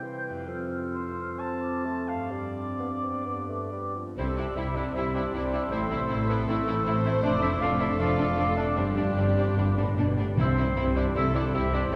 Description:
classical; 126-160 BPM; 4/4; rubato; C major; A4 = 440 Hz
mellow clarinet; second line; 0.0-12.0 s; G4 to F5; -37 LUFS; equal
mellow hollow large flute ensemble; second line; 0.0-12.0 s; B5 to G6; -39 LUFS; equal
mellow bassoon; accompaniment; 0.0-12.0 s; E3 to C4; -40 LUFS; equal
dark French horn section; sustained chords; 0.0-12.0 s; F3 to E4; -40 LUFS; equal
concert harp; arpeggios; 0.0-12.0 s; F2 to D5; -39 LUFS; equal
mellow cor anglais; second line; 0.9-12.0 s; A3 to A5; -39 LUFS; equal
rich symphonic violin section; melody; 4.2-12.0 s; D4 to E4; -37 LUFS; equal
warm symphonic violin section; second line; 4.2-12.0 s; G3 to D4; -42 LUFS; equal
rich symphonic viola section; accompaniment; 4.2-12.0 s; E4 to C5; -39 LUFS; equal
warm trombone section; sustained chords; 4.2-12.0 s; F2 to A3; -42 LUFS; equal
mellow trumpet; stabs; 4.2-12.0 s; C5 to D5; -41 LUFS; equal
dark symphonic cello section; bass; 4.2-12.0 s; F2 to C3; -33 LUFS; equal
rich symphonic double bass section; bass; 4.2-12.0 s; F1 to C2; -33 LUFS; equal
timpani; percussion; 9.6-10.9 s; G2 to C3; -33 LUFS; equal
wet cathedral reverb, RT60 4.7 s; recorded in a church or concert hall; -27 LUFS; mono
0.0-4.2 A section; 4.2-12.0 B section
0.5 F; 2.3 Gsus4; 3.3 G; 4.2 C; 5.7 Am; 7.2 Dm/F; 8.8 Gsus4; 9.6 G; 10.4 C

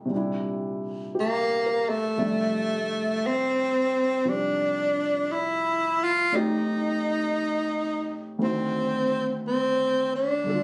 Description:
jazz; 58 BPM; 4/4; swing 69% on 8ths; F major; A4 = 441 Hz
warm grand piano; accompaniment; 0.0-10.6 s; D2 to E5; -32 LUFS; equal
breathy tenor saxophone; melody; 1.2-10.6 s; A3 to F4; -26 LUFS; equal
moderate studio reverb, RT60 0.8 s; recorded on a phone in the room, studio reverb, compression; -26 LUFS; mono
0.0-2.2 A section; 2.2-10.6 B section
tenor saxophone solo 0.0-2.2
0.1 C7; 2.2 Fmaj13; 6.3 Am7b5; 8.4 D7b9

